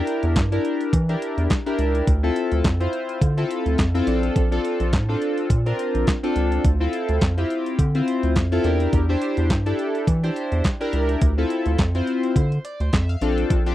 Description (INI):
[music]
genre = early-eighties boogie funk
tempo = 105 BPM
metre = 4/4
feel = swing 56% on 16ths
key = D minor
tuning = A4 = 439 Hz
[part]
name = chorused polysynth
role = accompaniment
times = 0.0-13.7 s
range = C4 to F5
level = -23 LUFS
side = left 2 dB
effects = none
[part]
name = clean 12-bit digital drum machine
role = drums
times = 0.1-13.7 s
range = handclaps, hi-hat, kick drum, snare drum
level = -21 LUFS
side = equal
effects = none
[part]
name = rubbery square bass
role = bass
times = 0.2-13.7 s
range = Bb1 to E3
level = -22 LUFS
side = equal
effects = none
[sound]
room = light reverb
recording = dry, close 1970s-style studio recording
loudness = -19 LUFS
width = side -14 dB against mid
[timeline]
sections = 0.0-13.7 A section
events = none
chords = 0.0 Em7b5; 2.1 Dm7; 4.1 Bbmaj9; 6.6 Dm7; 8.6 Em7b5; 11.2 Dm7; 13.2 Bbmaj9